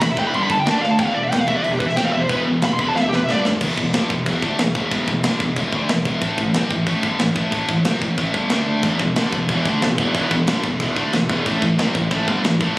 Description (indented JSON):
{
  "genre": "heavy metal",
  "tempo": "183 BPM",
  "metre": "4/4",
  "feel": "straight",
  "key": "E minor",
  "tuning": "A4 = 439 Hz",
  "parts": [
    { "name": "high-gain lead guitar", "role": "melody", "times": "0.0-3.4 s", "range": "G4 to C6", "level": "-21 LUFS", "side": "equal", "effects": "distortion, ping-pong delay" },
    { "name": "high-gain distorted guitar", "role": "riff", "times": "0.0-3.6, 8.8-12.8 s", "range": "E2 to D4", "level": "-25 LUFS", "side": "right 3 dB", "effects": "distortion" },
    { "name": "scooped high-gain guitar", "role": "riff", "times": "0.0-12.8 s", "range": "E2 to D4", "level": "-21 LUFS", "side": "left 1 dB", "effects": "distortion" },
    { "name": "fuzz fingered electric bass", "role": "bass", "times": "0.0-12.8 s", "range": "E1 to D2", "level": "-25 LUFS", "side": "equal", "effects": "overdrive" },
    { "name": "tight metal drum kit", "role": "drums", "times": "0.0-12.7 s", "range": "crash cymbal, kick drum, snare drum", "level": "-23 LUFS", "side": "equal", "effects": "none" }
  ],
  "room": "small room ambience",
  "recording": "recorded on a phone in the room, studio reverb, compression",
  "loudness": "-17 LUFS",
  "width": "side -21 dB against mid",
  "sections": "0.0-3.6 A section; 3.6-12.8 B section",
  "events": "lead electric guitar solo 0.0-3.6; drum fill 3.0-3.6",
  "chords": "0.3 G5; 0.7 D5; 1.0 E5; 3.3 G5; 3.6 Em; 6.2 A5; 8.5 D5; 8.8 Em; 11.5 A5",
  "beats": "0.01 0.34 0.67 | 1.00 1.32 1.65 1.98 | 2.30 2.63 2.96 3.29 | 3.61 3.94 4.26 4.59 | 4.92 5.24 5.57 5.90 | 6.22 6.55 6.88 7.20 | 7.53 7.86 8.19 8.51 | 8.84 9.17 9.49 9.82 | 10.15 10.48 10.81 11.13 | 11.46 11.79 12.12 12.45"
}